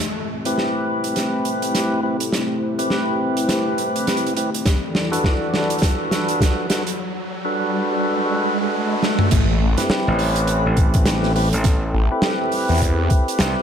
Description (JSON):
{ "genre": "glitch hop", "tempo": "103 BPM", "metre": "4/4", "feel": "swing 59% on 16ths", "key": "A dorian", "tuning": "A4 = 439 Hz", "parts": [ { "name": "dark analog pad", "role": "sustained chords", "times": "0.0-13.6 s", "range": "E3 to G5", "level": "-26 LUFS", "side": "left 2 dB", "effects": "chorus, sidechain pumping" }, { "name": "big rock drum kit", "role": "drums", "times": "0.0-13.5 s", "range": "crash cymbal, hi-hat, snare drum, toms", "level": "-23 LUFS", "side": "right 1 dB", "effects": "none" }, { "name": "riser", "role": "sound effects", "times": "0.0-9.3 s", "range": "none", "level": "-28 LUFS", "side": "right 1 dB", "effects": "none" }, { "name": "tonewheel organ", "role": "stabs", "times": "0.5-13.6 s", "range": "C4 to B4", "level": "-22 LUFS", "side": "equal", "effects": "slow rotary speaker, sidechain pumping, low-pass filter, dub echo" }, { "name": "electronic kick drum", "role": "drums", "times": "4.7-13.2 s", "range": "none", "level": "-17 LUFS", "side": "equal", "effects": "overdrive" }, { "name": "phased detuned saw bass", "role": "bass", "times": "9.3-13.1 s", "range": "A1 to E2", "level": "-18 LUFS", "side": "equal", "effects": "phaser, overdrive" }, { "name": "gritty slap bass", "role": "bass", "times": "10.1-13.5 s", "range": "A1 to C2", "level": "-20 LUFS", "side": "equal", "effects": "overdrive" } ], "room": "light reverb, small room reverb", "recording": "none", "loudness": "-17 LUFS", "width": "side -8 dB against mid", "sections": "0.0-9.3 A section; 9.3-13.6 B section", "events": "build-up 0.0-9.3; drum fill 0.0-7.0, 9.0; riser 0.0-9.3; drop 9.3-13.6", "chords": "0.0 Am7; 4.7 E7sus4; 9.3 Am7" }